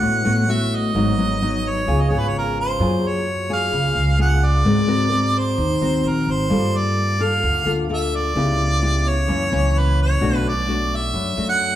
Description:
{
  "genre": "bossa nova",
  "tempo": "130 BPM",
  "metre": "4/4",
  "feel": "straight",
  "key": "unclear",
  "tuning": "A4 = 441 Hz",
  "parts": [
    { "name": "warm harmonica", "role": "melody", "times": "0.0-11.8 s", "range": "Bb4 to F#5", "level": "-22 LUFS", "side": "right 2 dB", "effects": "none" },
    { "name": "nylon-string guitar", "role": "accompaniment", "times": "0.0-11.8 s", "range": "F#2 to A#4", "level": "-22 LUFS", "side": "left 2 dB", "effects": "none" },
    { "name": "upright bass", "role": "bass", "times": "0.0-11.8 s", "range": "G#1 to G#2", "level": "-22 LUFS", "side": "right 1 dB", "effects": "none" }
  ],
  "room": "wet recital hall reverb, RT60 1.8 s",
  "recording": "recorded in a church or concert hall",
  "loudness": "-17 LUFS",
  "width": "side -12 dB against mid",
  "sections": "0.0-11.8 A section",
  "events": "none",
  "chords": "0.0 D6 (rootless); 0.9 G#m7; 1.9 C#7; 2.8 F#maj9; 4.7 G#9; 6.5 Gm9; 8.4 C#m7b5; 9.3 F#7; 10.2 Bm7"
}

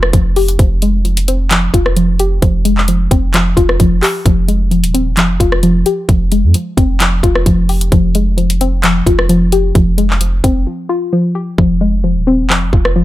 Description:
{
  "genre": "hip hop, trap",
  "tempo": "131 BPM",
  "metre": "4/4",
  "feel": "half-time",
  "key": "F minor",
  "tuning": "A4 = 440 Hz",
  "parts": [
    { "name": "soft round pluck", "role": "accompaniment", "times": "0.0-13.0 s", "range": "F3 to G4", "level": "-15 LUFS", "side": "left 2 dB", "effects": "chorus, low-pass filter" },
    { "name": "long sustained 808-style bass", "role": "bass", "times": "0.0-13.0 s", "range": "Eb1 to F2", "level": "-14 LUFS", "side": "equal", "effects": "none" },
    { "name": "trap drum kit", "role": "drums", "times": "0.0-13.0 s", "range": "handclaps, hi-hat, kick drum, rim click", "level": "-13 LUFS", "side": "equal", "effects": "none" }
  ],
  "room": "little or no reverb",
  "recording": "none",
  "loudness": "-10 LUFS",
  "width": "side -15 dB against mid",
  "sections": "0.0-11.6 A section; 11.6-13.0 B section",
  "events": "break 10.7-11.6; hi-hats muted 11.6-13.0",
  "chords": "0.0 Fmadd9; 11.6 Fm"
}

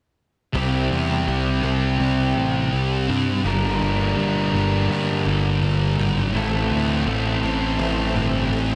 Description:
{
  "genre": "rock",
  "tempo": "83 BPM",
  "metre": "4/4",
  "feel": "straight",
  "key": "unclear",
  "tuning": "A4 = 440 Hz",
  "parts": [
    { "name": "biting overdriven guitar", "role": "riff", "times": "0.5-8.8 s", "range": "G2 to Bb4", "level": "-26 LUFS", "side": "equal", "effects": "reverse reverb" },
    { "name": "thick fuzz guitar", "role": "riff", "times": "0.5-8.8 s", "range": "G2 to C4", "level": "-26 LUFS", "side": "equal", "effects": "distortion, analog chorus" },
    { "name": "fuzz picked electric bass", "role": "bass", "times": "0.5-8.8 s", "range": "G1 to G2", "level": "-26 LUFS", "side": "equal", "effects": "overdrive" },
    { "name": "string machine, cellos", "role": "sustained chords", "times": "6.3-8.8 s", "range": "A4 to C6", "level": "-34 LUFS", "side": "equal", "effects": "ensemble chorus" }
  ],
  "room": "little or no reverb",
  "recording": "dense, heavily limited modern master",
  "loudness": "-21 LUFS",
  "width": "mono",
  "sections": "0.5-8.8 A section",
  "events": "none",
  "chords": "0.5 C; 3.4 Gm; 6.3 Am"
}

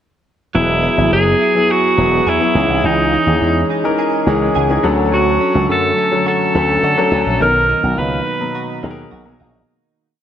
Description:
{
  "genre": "pop",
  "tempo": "105 BPM",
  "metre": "4/4",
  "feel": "straight",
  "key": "B major",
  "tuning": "A4 = 440 Hz",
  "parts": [
    { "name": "bright alto saxophone", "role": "melody", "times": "0.5-8.8 s", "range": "D#4 to B4", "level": "-16 LUFS", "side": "equal", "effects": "none" },
    { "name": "warm concert grand piano", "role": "accompaniment", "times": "0.5-9.7 s", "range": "B2 to A#5", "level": "-18 LUFS", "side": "left 3 dB", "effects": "none" },
    { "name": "direct-recorded clean electric guitar", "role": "riff", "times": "0.5-10.2 s", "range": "D#3 to G#4", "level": "-22 LUFS", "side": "right 8 dB", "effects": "analog chorus, digital delay" },
    { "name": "slap bass with an envelope filter", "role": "bass", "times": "0.5-9.6 s", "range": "E1 to D3", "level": "-18 LUFS", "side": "equal", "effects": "none" }
  ],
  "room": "moderate lush hall reverb, RT60 1.8 s",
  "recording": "none",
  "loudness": "-12 LUFS",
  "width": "side -10 dB against mid",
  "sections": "0.6-9.7 verse",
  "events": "grand piano fill 4.3-5.1; fade-out 7.4-9.7",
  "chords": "0.6 Eadd9; 2.6 C#madd9; 4.8 Dmaj7; 7.4 Bmaj7"
}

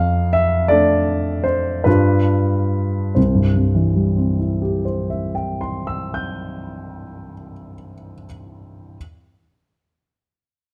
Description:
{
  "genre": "classical, romantic character piece for solo piano",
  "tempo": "44-58 BPM",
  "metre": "3/4",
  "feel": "rubato",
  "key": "C major",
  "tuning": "A4 = 440 Hz",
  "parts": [
    { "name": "warm baby grand piano", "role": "solo", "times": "0.0-9.0 s", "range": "C2 to G6", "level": "-20 LUFS", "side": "equal", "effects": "none" }
  ],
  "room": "light reverb",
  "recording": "close, detailed microphones",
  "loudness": "-19 LUFS",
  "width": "mono",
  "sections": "0.0-3.2 A section; 3.2-6.8 B section",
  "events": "slowing down 0.0-3.2",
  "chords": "0.0 Dm/F; 1.9 G7; 3.2 C"
}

